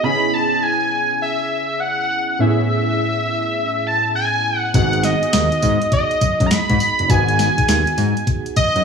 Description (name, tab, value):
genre	R&B, new jack swing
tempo	102 BPM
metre	4/4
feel	swing 64% on 16ths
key	unclear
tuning	A4 = 441 Hz
part	octave-doubled lead	melody	0.0-8.8 s	D#5 to B5	-18 LUFS	equal	chorus, tape echo
part	warm analog keys	accompaniment	0.0-8.8 s	A2 to G#4	-23 LUFS	right 2 dB	chorus
part	fat analog bass	bass	4.7-8.8 s	F#1 to G#2	-19 LUFS	left 2 dB	none
part	crisp 8-bit digital drum machine	drums	4.7-8.8 s	hi-hat, kick drum, snare drum, tambourine	-19 LUFS	left 1 dB	none
room	moderate echo chamber reverb, RT60 2.0 s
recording	small room reverb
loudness	-15 LUFS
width	side -6 dB against mid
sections	0.0-8.8 A section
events	none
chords	0.0 C#m7; 2.4 Amaj9; 4.7 G#m7